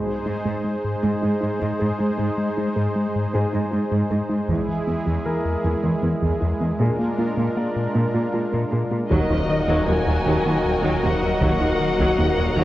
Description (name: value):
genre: cinematic, hybrid orchestral and electronic film score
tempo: 52 BPM (dotted quarters)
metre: 6/8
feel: straight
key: Eb minor from 9.1 s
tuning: A4 = 440 Hz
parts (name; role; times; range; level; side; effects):
- brassy analog pad; sustained chords; 0.0-12.6 s; Gb3 to C5; -26 LUFS; right 1 dB; chorus
- round analog bass; riff; 0.1-12.6 s; Eb2 to Bb3; -25 LUFS; left 1 dB; none
- soft round pluck; arpeggios; 0.3-12.6 s; Eb3 to Ab4; -31 LUFS; right 2 dB; none
- rich symphonic cello section; bass; 0.3-12.6 s; Eb2 to Bb2; -27 LUFS; right 2 dB; none
- bright concert grand piano; texture; 3.3-12.6 s; Ab3 to Eb5; -32 LUFS; left 1 dB; tape echo
- taiko ensemble; drums; 4.5-12.6 s; none; -31 LUFS; equal; none
- warm symphonic violin section; melody; 9.1-12.6 s; Eb5 to Bb5; -28 LUFS; left 3 dB; none
- rich symphonic violin section; second line; 9.1-12.6 s; Bb4 to Eb5; -29 LUFS; left 2 dB; none
- rich symphonic viola section; accompaniment; 9.1-12.6 s; F3 to Gb4; -27 LUFS; equal; none
- warm French horn section; sustained chords; 9.1-12.6 s; Bb3 to Gb4; -28 LUFS; left 3 dB; none
- mellow tuba; bass; 9.1-12.6 s; Eb2; -30 LUFS; right 2 dB; none
- snarling distorted saw bass; bass; 9.1-12.6 s; Eb1; -28 LUFS; equal; distortion
- warm studio double bass section; bass; 9.1-12.6 s; Eb2; -31 LUFS; right 2 dB; none
room: moderate concert hall reverb, RT60 2.0 s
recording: worn, warbling old tape, cassette tape, warbly pitch drift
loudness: -19 LUFS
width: side -15 dB against mid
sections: 0.0-9.1 A section; 9.1-12.6 B section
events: build-up 0.0-9.1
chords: 0.0 Ab; 4.5 E; 6.8 Bb7; 9.1 Ebm